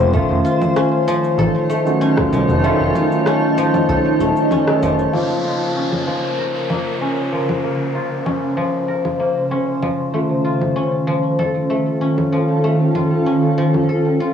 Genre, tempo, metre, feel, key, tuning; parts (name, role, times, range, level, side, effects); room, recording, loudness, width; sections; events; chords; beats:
organic downtempo; 96 BPM; 4/4; straight; Bb harmonic minor; A4 = 437 Hz
barky tine electric piano; accompaniment; 0.0-14.3 s; Db3 to C5; -22 LUFS; equal; medium stereo tremolo, sidechain pumping, cassette tape, tape echo, plate reverb
granular cloud pad; sustained chords; 0.0-14.3 s; Db3 to C6; -19 LUFS; equal; built-in reverb, sidechain pumping, cassette tape, plate reverb
guzheng; arpeggios; 0.0-14.3 s; F3 to Bb4; -21 LUFS; left 2 dB; low-pass filter, cassette tape, tape echo, plate reverb
smooth synth bass; bass; 0.0-5.0 s; Eb1 to C2; -19 LUFS; equal; tube saturation, sidechain pumping
electronic shaker, congas and rim click; drums; 0.0-13.9 s; -23 LUFS; equal; cassette tape
electronic kick drum; drums; 0.1-2.3 s; -23 LUFS; equal; cassette tape
downlifter; sound effects; 5.1-10.1 s; -30 LUFS; left 1 dB
quartz singing bowl; texture; 5.1-14.3 s; F4 to F5; -33 LUFS; equal; cassette tape, plate reverb
wet booth ambience, RT60 0.2 s; home recording on cassette, small room ambience; -15 LUFS; side -8 dB against mid
0.0-5.1 A section; 5.1-14.3 B section
kick drops out 2.6-5.1; band accent 4.7-5.0; filter sweep on guzheng 5.1-14.3
0.1 F7b9b13; 5.1 Bbmadd9; 10.1 F7b13
| 0.14 0.76 1.39 2.01 | 2.64 3.26 3.89 4.51 | 5.14 5.76 6.39 7.01 | 7.64 8.26 8.89 9.51 | 10.14 10.76 11.39 12.01 | 12.64 13.26 13.89